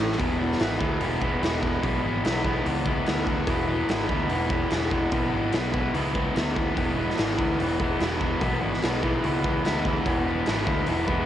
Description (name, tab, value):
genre	garage rock duo or trio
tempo	146 BPM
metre	4/4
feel	straight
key	E mixolydian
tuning	A4 = 440 Hz
part	raw garage guitar	riff	0.0-11.3 s	E2 to E4	-25 LUFS	equal	overdrive, cassette tape
part	growling picked electric bass	bass	0.0-11.2 s	E1 to D2	-31 LUFS	equal	overdrive
part	raw garage drum kit	drums	0.0-11.2 s	hi-hat, kick drum, ride cymbal, snare drum	-28 LUFS	equal	cassette tape
room	light reverb, studio reverb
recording	home recording on cassette, nothing above 11.0 kHz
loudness	-23 LUFS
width	side -11 dB against mid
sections	0.2-11.3 A section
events	none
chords	0.2 E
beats	| 0.19 0.60 1.01 1.43 | 1.84 2.25 2.66 3.07 | 3.48 3.89 4.30 4.71 | 5.12 5.53 5.95 6.36 | 6.77 7.18 7.59 8.00 | 8.41 8.83 9.24 9.65 | 10.06 10.48 10.89